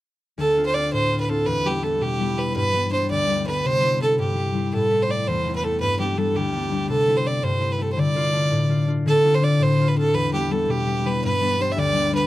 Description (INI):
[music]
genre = celtic folk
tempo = 111 BPM (dotted quarters)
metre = 6/8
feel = straight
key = D dorian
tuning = A4 = 440 Hz
[part]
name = bright fiddle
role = melody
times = 0.4-12.3 s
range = G4 to E5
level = -22 LUFS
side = right 2 dB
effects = none
[part]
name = concert harp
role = accompaniment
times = 0.4-12.3 s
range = D2 to F4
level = -22 LUFS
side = left 2 dB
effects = none
[sound]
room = little or no reverb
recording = dry, close 1970s-style studio recording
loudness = -19 LUFS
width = side -15 dB against mid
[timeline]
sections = 0.4-9.1 A section; 9.1-12.3 A section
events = none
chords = 0.4 Dm7; 1.5 Em; 2.6 G; 3.6 C; 4.7 Am; 5.8 G; 6.9 C6; 8.0 Dm; 9.1 Dm7; 10.2 Em; 11.2 G